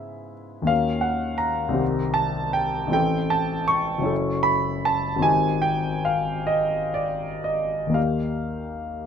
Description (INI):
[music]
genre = classical, impressionist solo piano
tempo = 40-55 BPM (dotted quarters)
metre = 6/8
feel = rubato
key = unclear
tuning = A4 = 439 Hz
[part]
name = warm grand piano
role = solo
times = 0.0-9.1 s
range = F#1 to C#6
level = -21 LUFS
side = equal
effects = none
[sound]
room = moderate small room reverb, RT60 0.5 s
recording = none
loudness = -21 LUFS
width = side -7 dB against mid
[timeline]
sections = 0.0-9.1 A section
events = none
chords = 0.0 C#m7/G#; 0.7 D#m7; 1.8 Cm; 3.0 Am; 4.1 F#m7; 5.3 Abmaj7; 8.0 Ebadd9